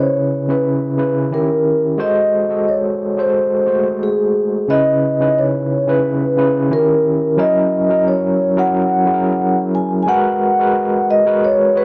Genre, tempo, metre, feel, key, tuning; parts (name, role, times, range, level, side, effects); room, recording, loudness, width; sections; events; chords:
soul; 89 BPM; 4/4; swing 54% on 16ths; G# minor; A4 = 440 Hz
vibraphone with soft mallets; melody; 0.0-11.8 s; G#4 to G#5; -18 LUFS; equal
overdriven tine electric piano; accompaniment; 0.0-11.8 s; C#3 to D#5; -20 LUFS; equal; medium tremolo
light reverb; dry, close 1970s-style studio recording; -16 LUFS; mono
0.0-10.1 A section; 10.1-11.8 B section
0.0 C#m7; 1.3 D#7b9; 2.0 G#7b9; 4.7 C#m7; 6.7 D#7b9; 7.4 F#7; 10.1 G#m9